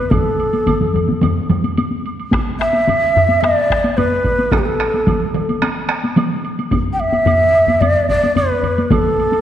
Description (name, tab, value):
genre	japanese traditional, taiko drum ensemble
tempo	109 BPM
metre	4/4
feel	straight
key	A suspended pentatonic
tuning	A4 = 440 Hz
part	breathy hollow shakuhachi	melody	0.0-9.4 s	G4 to G5	-16 LUFS	equal	none
part	solo taiko drums	percussion	0.1-9.0 s	none	-22 LUFS	right 1 dB	none
part	taiko ensemble	percussion	0.1-9.4 s	none	-21 LUFS	left 2 dB	none
part	taiko ensemble	percussion	0.1-9.0 s	none	-21 LUFS	left 2 dB	none
part	taiko ensemble	percussion	0.1-9.0 s	none	-20 LUFS	right 2 dB	none
part	woodblock	percussion	0.1-9.4 s	none	-29 LUFS	right 4 dB	none
room	wet concert hall reverb, RT60 1.9 s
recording	worn, warbling old tape, cassette tape, warbly pitch drift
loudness	-13 LUFS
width	side -10 dB against mid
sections	0.0-9.4 A section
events	none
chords	none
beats	| 0.12 0.67 1.22 1.78 | 2.33 2.88 3.43 3.98 | 4.53 5.08 5.63 6.17 | 6.72 7.27 7.82 8.36 | 8.91